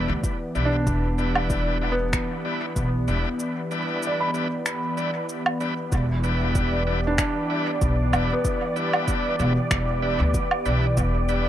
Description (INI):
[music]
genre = ambient dub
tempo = 95 BPM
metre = 4/4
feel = swing 54% on 16ths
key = E minor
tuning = A4 = 440 Hz
[part]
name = warm analog pad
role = sustained chords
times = 0.0-11.5 s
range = E3 to D5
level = -28 LUFS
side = left 1 dB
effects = chorus
[part]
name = felt-muted upright piano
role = arpeggios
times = 0.0-11.5 s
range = B3 to B5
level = -30 LUFS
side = equal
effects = dub echo
[part]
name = bright tonewheel organ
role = stabs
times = 0.0-11.5 s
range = G3 to B4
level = -30 LUFS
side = left 2 dB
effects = overdrive, fast rotary speaker, dub echo
[part]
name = upright bass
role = bass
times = 0.0-11.5 s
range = E1 to D2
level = -24 LUFS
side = equal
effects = none
[part]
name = electronic kick drum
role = drums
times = 0.2-11.1 s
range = none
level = -27 LUFS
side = equal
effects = overdrive
[part]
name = electronic shaker, woodblock and finger snaps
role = drums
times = 0.2-11.4 s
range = none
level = -28 LUFS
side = right 2 dB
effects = overdrive, dub echo
[part]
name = wind-like tuned noise texture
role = texture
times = 6.4-11.5 s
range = D5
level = -33 LUFS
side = right 4 dB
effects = built-in reverb
[sound]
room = moderate spring reverb, RT60 1.2 s, digital ambience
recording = none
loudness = -21 LUFS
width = side -11 dB against mid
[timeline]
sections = 0.0-5.9 A section; 5.9-11.5 B section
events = break 3.4-5.9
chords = 0.0 Em7